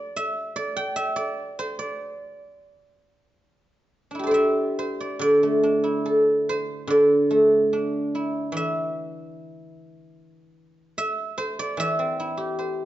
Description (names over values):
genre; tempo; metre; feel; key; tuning
chinese traditional, Chinese solo plucked strings; 73 BPM; 4/4; rubato; D shang mode; A4 = 435 Hz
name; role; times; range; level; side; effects
guzheng; solo; 0.0-12.9 s; D3 to G5; -21 LUFS; right 1 dB; none
room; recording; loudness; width
moderate recital hall reverb, RT60 1.4 s; dark, warm production, nothing above 7.5 kHz; -21 LUFS; side -14 dB against mid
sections
0.0-5.2 A section; 5.2-12.9 B section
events
none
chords
none